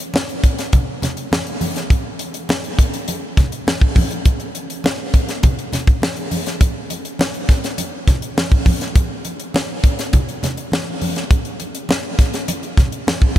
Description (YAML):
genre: pop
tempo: 102 BPM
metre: 4/4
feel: straight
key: none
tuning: none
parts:
  - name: tight funk drum kit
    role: drums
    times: 0.0-13.4 s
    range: hi-hat, kick drum, snare drum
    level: -16 LUFS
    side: equal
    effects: none
  - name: congas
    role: percussion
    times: 0.1-13.2 s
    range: none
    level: -26 LUFS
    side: right 1 dB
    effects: none
room: moderate huge ambient reverb, RT60 4.8 s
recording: dreamy mix soaked in reverb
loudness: -16 LUFS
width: side -13 dB against mid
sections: 0.0-13.4 A section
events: none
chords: none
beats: 0.14 0.73 1.32 | 1.91 2.49 3.08 3.67 | 4.25 4.84 5.43 6.02 | 6.61 7.19 7.78 8.37 | 8.96 9.54 10.13 10.72 | 11.30 11.89 12.48 13.07